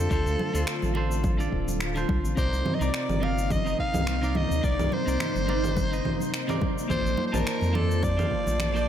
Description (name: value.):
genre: sunset chillout.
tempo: 106 BPM.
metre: 4/4.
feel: swing 55% on 16ths.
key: unclear.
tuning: A4 = 440 Hz.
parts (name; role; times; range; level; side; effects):
raspy soprano saxophone; melody; 0.0-8.9 s; A4 to F5; -31 LUFS; equal; tape echo.
clean electric guitar; accompaniment; 0.0-8.9 s; C3 to A5; -32 LUFS; equal; auto-pan, tape echo.
shimmering ambient pad; sustained chords; 0.0-8.9 s; A3 to A5; -34 LUFS; equal; chorus, built-in reverb.
round analog bass; bass; 0.0-8.9 s; D1 to F2; -28 LUFS; equal; tube saturation.
electronic kick drum; drums; 0.1-8.4 s; none; -30 LUFS; equal; overdrive.
electronic shaker, finger snaps and congas; drums; 0.1-8.9 s; none; -32 LUFS; right 2 dB; overdrive.
congas; percussion; 0.4-8.6 s; none; -36 LUFS; equal; none.
wind-like tuned noise texture; texture; 4.4-8.9 s; C5 to C6; -42 LUFS; equal; none.
room: light reverb.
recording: none.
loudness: -24 LUFS.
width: side -10 dB against mid.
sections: 0.0-8.9 A section.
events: none.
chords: 0.0 Dm7; 2.4 Cm9; 6.9 Bbmaj7.